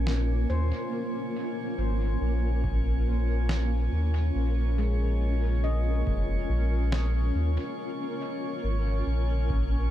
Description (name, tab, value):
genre	ambient dub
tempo	70 BPM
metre	4/4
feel	swing 60% on 16ths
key	Bb minor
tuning	A4 = 440 Hz
part	granular cloud pad	sustained chords	0.0-9.9 s	Bb3 to Bb4	-33 LUFS	equal	built-in reverb
part	handpan	arpeggios	0.0-9.4 s	Ab3 to Eb5	-39 LUFS	left 3 dB	tape echo
part	warm sub bass	bass	0.0-9.9 s	F1 to Eb2	-25 LUFS	equal	none
part	drifting glass-harmonics texture	texture	0.0-9.9 s	Db4 to Db5	-39 LUFS	left 2 dB	chorus, built-in reverb
part	electronic snare drum	drums	0.1-7.1 s	none	-36 LUFS	equal	dub echo
part	electronic kick drum	drums	2.6-9.7 s	none	-31 LUFS	equal	none
room	little or no reverb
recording	dark, warm production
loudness	-25 LUFS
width	side -12 dB against mid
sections	0.0-9.9 A section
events	none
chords	0.0 Bbm7